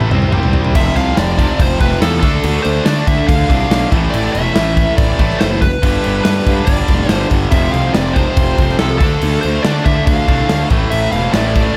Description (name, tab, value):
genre	hard rock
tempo	142 BPM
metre	4/4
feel	straight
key	unclear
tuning	A4 = 440 Hz
part	overdriven tonewheel organ	sustained chords	0.0-0.7, 7.5-11.8 s	F3 to F5	-31 LUFS	equal	none
part	high-gain distorted guitar	riff	0.0-11.8 s	F2 to D4	-24 LUFS	equal	distortion
part	tight distorted guitar	riff	0.0-11.8 s	F2 to D4	-24 LUFS	equal	distortion
part	fuzz picked electric bass	bass	0.0-11.6 s	E1 to D3	-20 LUFS	equal	overdrive
part	big rock drum kit	drums	0.0-11.7 s	crash cymbal, kick drum, snare drum, toms	-18 LUFS	equal	none
part	nasal lead guitar with a parked wah	melody	0.8-11.8 s	A4 to F5	-22 LUFS	equal	overdrive, slapback echo
room	light reverb, small room reverb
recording	none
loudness	-14 LUFS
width	mono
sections	0.8-11.8 A section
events	drum fill 0.0-0.8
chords	0.3 C5; 0.8 F5; 2.2 Dm; 3.9 A5; 5.8 G; 7.5 F5; 9.0 Dm; 10.7 Am